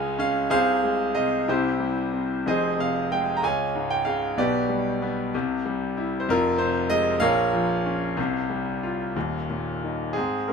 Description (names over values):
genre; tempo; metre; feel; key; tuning
classical, lyrical solo piano; 62 BPM (dotted quarters); 6/8; rubato; F minor; A4 = 439 Hz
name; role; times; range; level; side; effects
bright grand piano; solo; 0.0-10.5 s; Eb1 to Bb5; -22 LUFS; equal; none
room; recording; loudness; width
moderate studio ambience, RT60 0.5 s; close, detailed microphones; -22 LUFS; side -5 dB against mid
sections
0.0-10.1 A section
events
none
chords
0.5 Fm/C; 1.5 C; 2.5 Fm; 3.4 Db; 4.4 G/B; 5.3 C; 6.3 Fm; 7.2 Bbm; 8.2 Csus4; 9.2 Eb5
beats
| 0.50 1.47 | 2.45 3.42 | 4.38 5.33 | 6.28 7.22 | 8.18 9.15 | 10.15